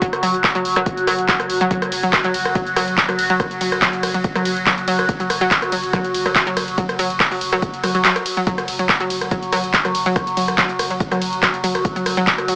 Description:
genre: driving peak-time techno.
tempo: 142 BPM.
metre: 4/4.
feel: straight.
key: unclear.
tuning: A4 = 438 Hz.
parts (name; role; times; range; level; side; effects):
analog pluck; riff; 0.0-12.6 s; F#3; -22 LUFS; equal; chorus, sidechain pumping, tape echo.
overtone-sweeping drone; drone; 0.0-12.6 s; F#3 to F#4; -22 LUFS; equal; chorus, built-in reverb, phaser, sidechain pumping.
electronic kick drum; drums; 0.0-12.4 s; none; -23 LUFS; equal; none.
punchy analog drum machine; drums; 0.0-12.6 s; handclaps, hi-hat, ride cymbal, rim click; -19 LUFS; equal; none.
warm sub bass; bass; 0.1-12.6 s; F#1; -38 LUFS; equal; overdrive, sidechain pumping, low-pass filter.
room: light reverb.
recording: AM radio sound.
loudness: -16 LUFS.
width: side -29 dB against mid.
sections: 0.0-12.6 A section.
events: kick drops out 8.0-8.5.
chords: none.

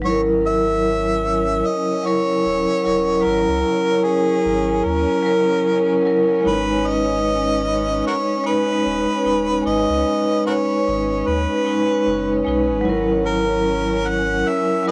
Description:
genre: trip hop.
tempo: 75 BPM.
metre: 4/4.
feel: swing 57% on 16ths.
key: unclear.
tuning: A4 = 440 Hz.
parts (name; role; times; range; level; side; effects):
vibraphone with medium hard mallets; accompaniment; 0.0-14.9 s; F#3 to B4; -21 LUFS; equal; harmonic tremolo, low-pass filter, cassette tape, plate reverb.
warm sub bass; bass; 0.0-14.4 s; D#1 to D#2; -31 LUFS; equal; transformer saturation.
warm harmonica; melody; 0.1-14.9 s; F#4 to F#5; -25 LUFS; equal; cassette tape, plate reverb, tape echo.
dark chamber string section; sustained chords; 0.1-14.9 s; C#4; -30 LUFS; equal; cassette tape, plate reverb.
room: moderate booth ambience, RT60 0.3 s.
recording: home recording on cassette.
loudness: -19 LUFS.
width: mono.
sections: 0.0-14.9 A section.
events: none.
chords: 0.1 F#7; 6.5 G#m; 12.9 F#7.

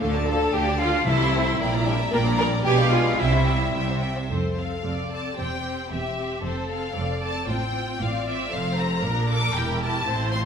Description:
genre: quick classical-period movement for symphony orchestra.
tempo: 114 BPM.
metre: 2/4.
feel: rubato.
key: F major.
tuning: A4 = 440 Hz.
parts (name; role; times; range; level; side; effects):
silver concert flute; second line; 0.0-3.8 s; A4 to Bb5; -28 LUFS; left 2 dB; none.
warm studio violin section; second line; 0.0-10.5 s; E4 to C6; -31 LUFS; left 2 dB; none.
rich studio viola section; accompaniment; 0.0-10.5 s; A3 to C5; -27 LUFS; right 1 dB; none.
clear studio cello section; bass; 0.0-10.5 s; E2 to D3; -28 LUFS; right 2 dB; none.
clear studio double bass section; bass; 0.0-10.5 s; E1 to D2; -28 LUFS; right 2 dB; none.
mellow French horn section; sustained chords; 0.3-4.0 s; F3 to D4; -31 LUFS; left 4 dB; none.
rich studio violin section; melody; 0.5-10.4 s; B4 to D6; -30 LUFS; left 3 dB; none.
timpani; percussion; 1.1-1.6 s; C3; -30 LUFS; left 3 dB; none.
room: wet scoring stage reverb, RT60 1.6 s.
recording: minimal, uncompressed stereo recording.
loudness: -21 LUFS.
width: side -7 dB against mid.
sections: 0.0-4.3 A section; 4.3-10.5 B section.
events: none.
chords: 0.0 Dm; 1.1 Am/C; 1.6 Gm/Bb; 2.7 Bdim7; 3.2 C; 4.3 F; 5.4 C/E; 6.4 F; 7.5 F/A; 8.5 F; 9.0 Bb; 9.6 Edim.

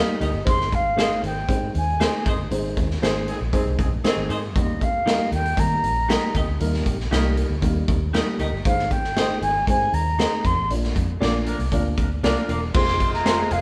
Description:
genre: uptempo 1960s-style soul.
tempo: 117 BPM.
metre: 4/4.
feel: straight.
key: Eb major.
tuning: A4 = 438 Hz.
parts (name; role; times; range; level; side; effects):
dark upright piano; accompaniment; 0.0-13.6 s; G3 to F5; -30 LUFS; equal; none.
semi-hollow electric guitar; stabs; 0.0-13.4 s; C4 to Eb5; -33 LUFS; equal; spring reverb.
vintage muted fingered electric bass; bass; 0.2-13.6 s; Fb1 to Eb3; -29 LUFS; equal; none.
raw garage drum kit; drums; 0.2-13.6 s; crash cymbal, hi-hat, kick drum, snare drum; -26 LUFS; equal; none.
concert flute; melody; 0.5-13.6 s; Eb5 to C6; -26 LUFS; equal; none.
warm horn section; second line; 3.3-4.4, 11.5-13.6 s; C3 to Bb4; -35 LUFS; equal; none.
percussive tonewheel organ; sustained chords; 12.8-13.6 s; F4 to Ab5; -38 LUFS; equal; fast rotary speaker, chorus vibrato.
room: moderate stone room reverb, RT60 1.1 s.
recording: band playing live in one room, cassette tape.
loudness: -22 LUFS.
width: mono.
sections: 0.0-12.7 A section.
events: upright piano fill 0.0-0.5; band accent 2.5-4.6, 10.7-12.7.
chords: 0.5 Ab; 4.6 Eb; 8.7 Ab; 10.7 Bb; 12.7 Fm.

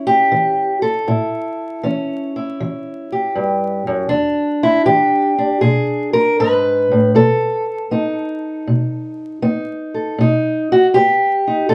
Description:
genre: acoustic country blues, solo or duo.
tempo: 79 BPM.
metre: 4/4.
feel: swing 68% on 8ths.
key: unclear.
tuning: A4 = 441 Hz.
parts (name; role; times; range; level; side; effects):
fingerpicked steel-string acoustic guitar; solo; 0.0-11.7 s; E2 to B4; -17 LUFS; equal; none.
room: wet studio reverb, RT60 0.6 s.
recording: band playing live in one room, vinyl crackle.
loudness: -17 LUFS.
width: mono.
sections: 0.0-11.7 A section.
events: none.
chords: 0.0 A7; 4.1 E7; 7.1 B7.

